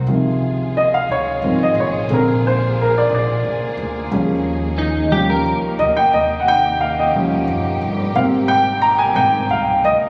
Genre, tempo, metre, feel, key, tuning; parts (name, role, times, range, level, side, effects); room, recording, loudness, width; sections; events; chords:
slow gospel; 60 BPM (dotted quarters); 6/8; straight; A4 = 440 Hz
warm baby grand piano; accompaniment; 0.0-10.1 s; C3 to Bb5; -18 LUFS; equal
muted studio string section; sustained chords; 0.0-10.1 s; G3 to Ab4; -30 LUFS; equal
upright bass; bass; 0.0-10.1 s; Gb1 to Eb2; -26 LUFS; equal
clean electric guitar; second line; 4.8-6.3 s; Eb4 to Bb4; -23 LUFS; equal; analog chorus
moderate concert hall reverb, RT60 2.0 s; recorded on a phone in the room, club reverb; -17 LUFS; mono
0.0-10.1 A section
grand piano solo 0.0-10.1
0.1 Dbmaj7; 2.1 Bb7; 4.1 Eb7sus4; 5.1 Eb7; 8.2 Abmaj7